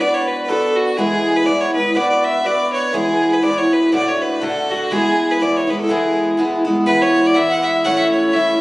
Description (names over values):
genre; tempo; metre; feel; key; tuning
celtic folk, Celtic polka; 122 BPM; 2/4; swing 56% on 8ths; E mixolydian; A4 = 441 Hz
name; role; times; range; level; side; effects
clear fiddle; melody; 0.0-8.6 s; F#4 to F#5; -18 LUFS; equal; none
picked twelve-string acoustic guitar; accompaniment; 0.0-8.6 s; D2 to B4; -16 LUFS; equal; none
room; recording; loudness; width
moderate recital hall reverb, RT60 1.6 s; recorded on a phone in the room, club reverb, vinyl crackle, compression; -14 LUFS; side -19 dB against mid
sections
0.0-6.9 A section; 6.9-8.6 B section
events
none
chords
0.0 Bm; 1.0 E; 2.0 Bm; 2.9 E; 3.9 D; 4.9 E; 7.9 A